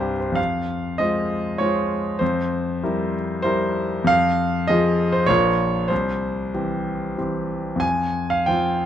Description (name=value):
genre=classical, romantic character piece for solo piano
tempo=97 BPM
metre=3/4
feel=uneven beats, rubato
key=F minor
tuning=A4 = 440 Hz
part: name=bright grand piano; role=solo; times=0.0-8.9 s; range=Bb1 to Ab5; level=-20 LUFS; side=equal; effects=none
room=light reverb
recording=close, detailed microphones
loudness=-19 LUFS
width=side -10 dB against mid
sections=0.4-8.9 A section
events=none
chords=0.4 Fm; 2.2 C7/F; 4.1 Fm; 5.3 Bbm; 5.9 C; 7.8 F5